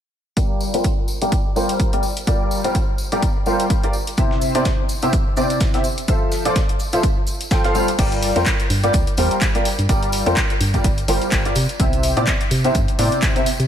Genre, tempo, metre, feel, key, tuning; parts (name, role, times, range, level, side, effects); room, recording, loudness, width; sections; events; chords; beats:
piano house; 126 BPM; 4/4; swing 56% on 16ths; G dorian; A4 = 439 Hz
clear upright piano; riff; 0.4-13.4 s; C3 to G5; -20 LUFS; equal; ensemble chorus, sidechain pumping, low-pass filter, ping-pong delay
electronic kick drum; drums; 0.4-13.3 s; -20 LUFS; equal
punchy analog drum machine; drums; 0.4-13.7 s; crash cymbal, handclaps, hi-hat; -25 LUFS; left 1 dB
tambourine; percussion; 0.4-13.7 s; -34 LUFS; left 1 dB
electronic shaker and snare drum; drums; 4.2-7.9 s; -34 LUFS; right 1 dB; sidechain pumping on perc, high-pass filter on perc, high-pass filter on snare, high-pass filter on room
organ-like FM bass; bass; 8.0-13.7 s; G1 to C3; -21 LUFS; equal; sidechain pumping
light reverb, digital ambience; -16 LUFS; side -9 dB against mid
0.4-8.0 A section; 8.0-13.7 B section
filter sweep on upright piano 0.4-8.0
0.4 Gm7; 3.9 C; 6.1 Fmaj7; 8.0 Gm7; 11.6 C
| 0.37 0.84 1.32 1.80 | 2.27 2.75 3.23 3.70 | 4.18 4.65 5.13 5.61 | 6.08 6.56 7.03 7.51 | 7.99 8.46 8.94 9.41 | 9.89 10.37 10.84 11.32 | 11.80 12.27 12.75 13.22